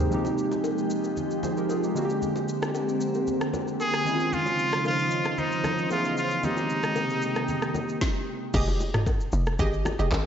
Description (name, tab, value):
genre	amapiano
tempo	114 BPM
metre	4/4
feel	straight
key	F minor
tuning	A4 = 440 Hz
part	warm analog keys	accompaniment	0.0-8.0 s	D3 to C5	-30 LUFS	right 2 dB	chorus, low-pass filter
part	glassy FM pad	sustained chords	0.0-8.0 s	C3 to C5	-29 LUFS	equal	ensemble chorus, built-in reverb, sidechain pumping, low-pass filter
part	afro-pop drum kit	drums	0.1-10.2 s	crash cymbal, handclaps, kick drum, rim click, shaker, snare drum, toms	-31 LUFS	equal	none
part	congas and bongos	percussion	0.1-10.2 s	none	-36 LUFS	left 3 dB	none
part	trumpet with straight mute	melody	3.8-8.0 s	Eb4 to Ab4	-27 LUFS	equal	low-pass filter, analog delay
part	analog pluck	stabs	8.5-10.1 s	G4 to Eb5	-31 LUFS	right 2 dB	chorus, analog delay
part	hollow log drum bass	bass	8.5-10.3 s	F1 to Ab1	-27 LUFS	equal	none
room	wet lush hall reverb, RT60 1.6 s, digital ambience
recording	dreamy mix soaked in reverb, nothing above 7.8 kHz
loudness	-24 LUFS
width	side -8 dB against mid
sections	0.0-8.5 A section; 8.5-10.3 B section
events	filter sweep 0.0-8.5; drop 8.5-10.3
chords	0.1 Fm9; 2.0 Bb13; 4.1 Dbmaj9; 5.9 Amaj9; 6.4 Abmaj9; 8.5 Fm9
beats	| 0.12 0.65 1.17 1.70 | 2.22 2.75 3.28 3.80 | 4.33 4.86 5.38 5.91 | 6.43 6.96 7.49 8.01 | 8.54 9.07 9.59 10.12